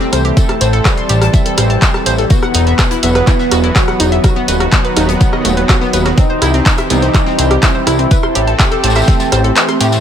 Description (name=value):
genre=melodic techno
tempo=124 BPM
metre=4/4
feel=straight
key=unclear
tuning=A4 = 440 Hz
part: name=expressive portamento lead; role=melody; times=0.0-9.9 s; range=F#3 to G4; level=-18 LUFS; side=equal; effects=wide subtle chorus, sidechain pumping, digital delay
part: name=lush unison pad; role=sustained chords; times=0.0-10.0 s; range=D#3 to A4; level=-21 LUFS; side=left 1 dB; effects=chorus, sidechain pumping
part: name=analog pluck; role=arpeggios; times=0.0-10.0 s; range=A3 to C6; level=-19 LUFS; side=equal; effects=chorus, sidechain pumping, dub echo
part: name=analog synth brass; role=stabs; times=0.0-10.0 s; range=D#3 to C4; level=-21 LUFS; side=right 4 dB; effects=chorus, sidechain pumping, dub echo
part: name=fat analog bass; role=bass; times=0.1-10.0 s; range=D#1 to A2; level=-14 LUFS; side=equal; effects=sidechain pumping
part: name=modern studio drum kit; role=drums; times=0.1-10.0 s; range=hi-hat, snare drum, tambourine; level=-27 LUFS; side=left 4 dB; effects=high-pass filter on hats, high-pass filter on snare, high-pass filter on perc, high-pass filter on room
part: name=punchy analog drum machine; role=drums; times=0.1-10.0 s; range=handclaps, hi-hat, rim click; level=-17 LUFS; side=equal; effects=none
part: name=electronic kick drum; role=drums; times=0.4-9.2 s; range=none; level=-12 LUFS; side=equal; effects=overdrive
room=digital ambience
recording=none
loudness=-9 LUFS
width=side -9 dB against mid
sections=0.0-10.0 A section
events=kick drops out 9.6-10.0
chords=0.4 Am; 2.3 Esus2; 4.2 B/D#; 6.2 C; 8.1 Am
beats=| 0.37 0.85 1.34 1.82 | 2.30 2.79 3.27 3.76 | 4.24 4.72 5.21 5.69 | 6.17 6.66 7.14 7.63 | 8.11 8.59 9.08 9.56